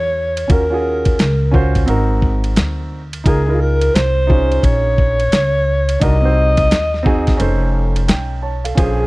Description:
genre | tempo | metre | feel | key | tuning
hip hop, jazz-hop | 87 BPM | 4/4 | swing 64% on 16ths | unclear | A4 = 441 Hz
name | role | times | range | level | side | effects
breathy alto saxophone | melody | 0.0-9.1 s | Ab4 to Eb5 | -18 LUFS | equal | none
upright bass | bass | 0.0-9.1 s | F1 to E2 | -17 LUFS | equal | none
dusty soul sampler-style drum kit | drums | 0.4-9.0 s | hi-hat, kick drum, ride cymbal, snare drum | -16 LUFS | equal | none
warm concert grand piano | accompaniment | 0.5-9.0 s | C4 to A5 | -21 LUFS | right 2 dB | none
room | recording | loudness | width
small room reverb | dry, close 1970s-style studio recording | -13 LUFS | side -22 dB against mid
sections
0.0-8.8 A section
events
break 7.4-8.8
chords
0.5 Ebm7; 1.9 Ab9; 3.3 Db69; 6.0 Cdim; 7.4 F7b13

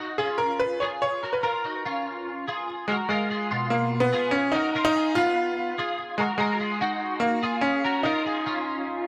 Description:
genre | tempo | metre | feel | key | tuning
indie pop | 145 BPM | 4/4 | straight | unclear | A4 = 441 Hz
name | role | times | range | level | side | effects
twelve-string electric guitar | arpeggios | 0.0-9.0 s | Cb3 to Bb4 | -30 LUFS | equal | ensemble chorus
bright upright piano | melody | 0.2-9.1 s | Ab3 to Db5 | -27 LUFS | equal | none
room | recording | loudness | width
moderate echo chamber reverb, RT60 1.7 s, studio ambience | none | -26 LUFS | mono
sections
0.0-3.1 A section; 3.1-9.1 B section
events
none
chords
0.0 Bbm; 3.1 Fdim; 6.4 Ebm; 8.1 Dbadd9

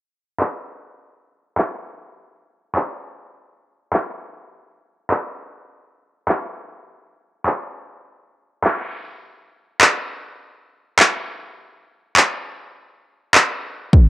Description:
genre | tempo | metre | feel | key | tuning
pop | 102 BPM | 4/4 | straight | none | none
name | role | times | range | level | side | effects
punchy analog drum machine | drums | 0.4-14.1 s | handclaps, kick drum | -15 LUFS | equal | cassette tape
room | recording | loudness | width
moderate spring reverb, RT60 1.8 s | home recording on cassette, low-pass filter | -17 LUFS | side -17 dB against mid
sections
0.0-9.2 A section; 9.2-14.1 B section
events
filter sweep 0.0-9.2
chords
none

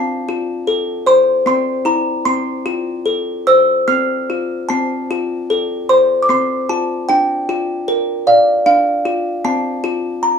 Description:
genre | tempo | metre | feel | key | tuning
children's music | 76 BPM | 3/4 | rubato | F major | A4 = 440 Hz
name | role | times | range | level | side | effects
music box | solo | 0.0-10.4 s | C4 to F6 | -14 LUFS | left 1 dB | none
room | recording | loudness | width
moderate small room reverb, RT60 0.6 s | band playing live in one room, studio ambience | -14 LUFS | side -6 dB against mid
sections
0.0-4.7 A section; 4.7-10.4 A section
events
none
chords
0.0 F/C; 1.5 C7; 2.2 F; 7.1 Bb; 9.4 F/C

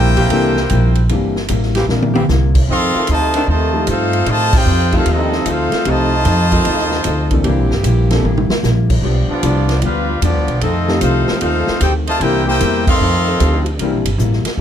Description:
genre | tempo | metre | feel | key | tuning
jazz, big band swing | 151 BPM | 4/4 | swing 66% on 8ths | unclear | A4 = 440 Hz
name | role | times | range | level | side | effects
brilliant trumpet section | melody | 0.0-13.6 s | B3 to C6 | -18 LUFS | equal | none
bright trombone section | second line | 0.0-13.6 s | C3 to G4 | -21 LUFS | equal | none
vintage hollow-body jazz guitar | accompaniment | 0.0-14.6 s | F2 to A4 | -24 LUFS | left 7 dB | none
upright bass | bass | 0.0-14.6 s | G1 to A2 | -16 LUFS | right 1 dB | none
warm saxophone section | sustained chords | 0.2-14.0 s | Eb3 to Bb4 | -24 LUFS | equal | none
swinging big-band drum kit | drums | 0.2-14.6 s | crash cymbal, hi-hat, kick drum, ride cymbal, snare drum, toms | -21 LUFS | equal | none
warm concert grand piano | accompaniment | 0.3-8.2, 10.9-14.0 s | E3 to Bb4 | -21 LUFS | left 1 dB | none
room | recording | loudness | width
light reverb | none | -13 LUFS | side -9 dB against mid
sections
0.0-14.6 A section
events
drum fill 1.9-2.3, 8.2-8.6; band accent 4.5, 12.8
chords
0.0 C7; 2.7 F7; 7.4 C7; 9.0 G7; 10.6 F7; 12.2 C7; 13.0 F7; 13.8 C7

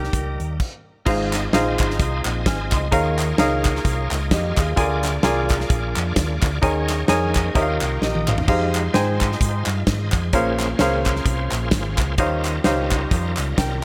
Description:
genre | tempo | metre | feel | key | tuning
uptempo gospel | 130 BPM | 4/4 | swing 57% on 8ths | unclear | A4 = 435 Hz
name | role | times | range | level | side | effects
clear trumpet | melody | 0.0-0.6 s | G4 | -34 LUFS | equal | none
bright tonewheel organ | sustained chords | 0.0-13.8 s | G3 to Ab5 | -32 LUFS | equal | slow rotary speaker, chorus vibrato
dark French horn section | sustained chords | 0.0-0.6 s | Eb3 to Bb4 | -39 LUFS | equal | none
hollow-body short-scale fingered electric bass | bass | 0.0-13.8 s | Ab1 to Ab2 | -27 LUFS | equal | none
modern studio drum kit | drums | 0.0-13.7 s | crash cymbal, hi-hat, kick drum, snare drum, splash cymbal, toms | -24 LUFS | equal | none
clear concert grand piano | accompaniment | 1.1-13.8 s | Ab2 to F6 | -25 LUFS | equal | none
group handclap | percussion | 1.3-13.5 s | none | -31 LUFS | equal | none
room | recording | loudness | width
light reverb, studio ambience | none | -21 LUFS | mono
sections
0.0-1.1 A section; 1.1-13.8 B section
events
stop 0.6-1.1; tonewheel organ fill 3.9-4.8; drum fill 8.0-8.5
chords
0.0 Eb; 1.1 Ab6; 2.9 Eb9sus4; 4.8 Bb7; 6.6 Eb7sus4; 7.6 Eb9; 8.5 Fm9; 10.3 Bbm9; 12.2 Eb13

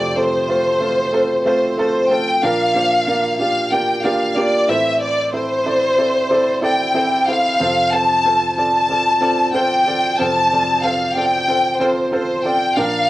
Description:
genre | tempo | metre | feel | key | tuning
pop | 93 BPM | 4/4 | straight | F major | A4 = 441 Hz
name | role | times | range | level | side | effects
warm symphonic violin section | melody | 0.0-13.1 s | C5 to A5 | -16 LUFS | left 1 dB | cassette tape
warm upright piano | accompaniment | 0.0-13.1 s | F2 to D5 | -20 LUFS | right 1 dB | none
room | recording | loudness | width
moderate studio reverb, RT60 0.7 s | home recording on cassette | -14 LUFS | side -16 dB against mid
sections
0.0-13.1 A section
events
none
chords
0.0 F; 2.4 Bb; 4.7 Am; 7.6 F

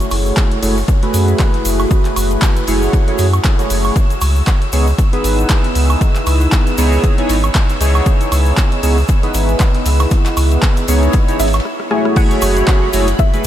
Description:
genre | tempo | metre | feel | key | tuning
deep house | 117 BPM | 4/4 | swing 56% on 16ths | F# dorian | A4 = 440 Hz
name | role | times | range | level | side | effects
chorused polysynth | stabs | 0.0-13.5 s | A3 to C#5 | -17 LUFS | equal | sidechain pumping, analog delay
punchy analog drum machine | drums | 0.0-13.5 s | crash cymbal, handclaps, hi-hat, rim click, woodblock | -22 LUFS | right 1 dB | overdrive, studio reverb
egg shaker | percussion | 0.0-13.5 s | none | -30 LUFS | left 4 dB | none
warm sub bass | bass | 0.1-13.5 s | F#1 to F#2 | -14 LUFS | equal | sidechain pumping
modern studio drum kit | drums | 0.1-13.5 s | ride cymbal, snare drum | -32 LUFS | left 4 dB | none
electronic kick drum | drums | 0.4-13.3 s | none | -13 LUFS | equal | overdrive, studio reverb
string machine, violins | texture | 4.0-13.5 s | B5 to E6 | -29 LUFS | equal | ensemble chorus, sidechain pumping
soft round pluck | melody | 11.4-13.5 s | E5 to G#5 | -23 LUFS | right 1 dB | wide subtle chorus, diffuse ambient delay
room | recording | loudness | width
light reverb, studio reverb | none | -12 LUFS | side -12 dB against mid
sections
0.0-12.2 A section; 12.2-13.5 B section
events
break 11.7-12.2; drum fill 11.7-12.2; drop 12.2-13.5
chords
0.0 F#m9; 4.0 C#m9; 12.2 F#m9

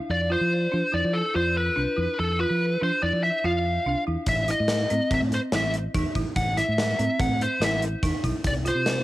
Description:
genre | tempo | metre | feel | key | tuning
progressive instrumental, band music in an uneven meter | 144 BPM | 5/4 | straight | unclear | A4 = 435 Hz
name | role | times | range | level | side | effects
biting lead guitar | melody | 0.1-9.0 s | A4 to F#5 | -26 LUFS | left 1 dB | overdrive, cassette tape, plate reverb, analog delay
fingered electric bass | bass | 0.1-9.0 s | A1 to F3 | -27 LUFS | equal | none
folk marimba with hard mallets | arpeggios | 0.3-8.9 s | C4 to F4 | -30 LUFS | right 1 dB | cassette tape, plate reverb
gated 80s drum kit | drums | 4.3-9.0 s | hi-hat, kick drum, snare drum | -28 LUFS | equal | cassette tape
room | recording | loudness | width
light reverb | home recording on cassette | -22 LUFS | side -16 dB against mid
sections
0.0-9.0 A section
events
none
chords
0.1 F5; 4.3 Am; 8.4 N.C.

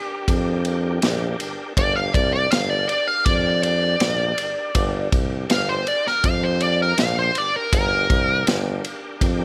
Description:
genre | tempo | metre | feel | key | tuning
blues rock power trio and southern rock | 81 BPM | 4/4 | straight | G minor | A4 = 440 Hz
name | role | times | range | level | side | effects
dark smooth lead guitar | melody | 0.0-8.5 s | G4 to F5 | -24 LUFS | equal | wah, overdrive
overdriven tonewheel organ | sustained chords | 0.0-9.4 s | D4 to Ab5 | -36 LUFS | equal | chorus vibrato, fast rotary speaker
clear tuba | bass | 0.3-9.4 s | G1 to F2 | -26 LUFS | equal | none
vintage drum kit | drums | 0.3-9.4 s | kick drum, ride cymbal, snare drum | -26 LUFS | equal | none
room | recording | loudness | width
small room ambience | none | -21 LUFS | mono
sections
0.0-9.4 A section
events
lead electric guitar solo 0.0-9.4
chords
0.0 Gm

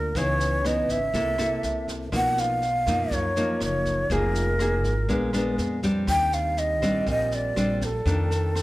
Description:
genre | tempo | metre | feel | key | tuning
bossa nova | 122 BPM | 4/4 | straight | unclear | A4 = 441 Hz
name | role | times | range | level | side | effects
breathy hollow shakuhachi | melody | 0.0-8.6 s | A4 to G5 | -26 LUFS | equal | none
nylon-string guitar | accompaniment | 0.0-8.6 s | F2 to A4 | -27 LUFS | left 1 dB | none
upright bass | bass | 0.0-8.6 s | F1 to F#2 | -29 LUFS | equal | none
jazz brush drum kit | drums | 0.2-8.6 s | kick drum, rim click, snare drum | -34 LUFS | equal | none
room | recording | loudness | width
moderate large studio reverb, RT60 1.5 s | none | -22 LUFS | side -18 dB against mid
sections
0.0-8.6 A section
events
none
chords
0.2 Dbm9; 1.1 C6; 2.1 Bmaj9#11; 4.1 Fm7; 5.1 Bb7b9; 6.1 Eb6; 8.1 F6

